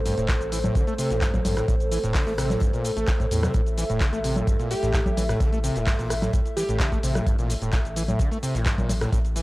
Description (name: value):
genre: acid house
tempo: 129 BPM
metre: 4/4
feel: straight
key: A phrygian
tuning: A4 = 442 Hz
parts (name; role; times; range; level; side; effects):
- dark analog pad; sustained chords; 0.0-9.4 s; A3 to E5; -30 LUFS; equal; chorus, sidechain pumping
- round analog bass; bass; 0.0-9.4 s; E1 to E2; -29 LUFS; equal; tube saturation, sidechain pumping
- overdriven acid bass; riff; 0.1-9.4 s; G2 to A3; -28 LUFS; equal; distortion, tube saturation, ensemble chorus
- gated 80s drum kit; drums; 0.1-9.4 s; hi-hat, snare drum; -43 LUFS; left 1 dB; none
- punchy analog drum machine; drums; 0.1-9.4 s; congas, handclaps, hi-hat, rim click, shaker; -30 LUFS; equal; none
- electronic kick drum; drums; 0.3-9.2 s; none; -24 LUFS; equal; overdrive
- plucky unison lead; melody; 4.7-6.9 s; G4; -30 LUFS; equal; vintage 12-bit sampler grit, analog delay
room: light reverb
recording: none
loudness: -21 LUFS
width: side -19 dB against mid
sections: 0.0-9.4 A section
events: none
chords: 0.0 Am